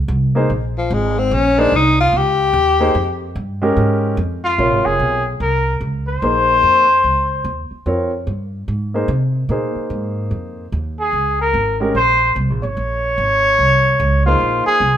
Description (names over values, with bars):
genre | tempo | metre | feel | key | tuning
modal jazz | 147 BPM | 4/4 | swing 64% on 8ths | Bb dorian | A4 = 440 Hz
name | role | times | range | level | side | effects
upright bass | bass | 0.0-15.0 s | F1 to C3 | -20 LUFS | right 1 dB | none
dark concert grand piano | accompaniment | 0.4-14.8 s | C3 to Db5 | -20 LUFS | right 1 dB | none
breathy tenor saxophone | second line | 0.8-3.4 s | F3 to G4 | -15 LUFS | left 3 dB | none
mellow trumpet | melody | 4.4-7.7, 11.0-15.0 s | F4 to Db5 | -15 LUFS | left 1 dB | none
room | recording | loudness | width
moderate large studio reverb, RT60 1.2 s | minimal, uncompressed stereo recording | -14 LUFS | side -10 dB against mid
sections
0.0-4.6 A section; 4.6-15.0 B section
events
tenor saxophone solo 0.0-4.6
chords
0.0 Bbm9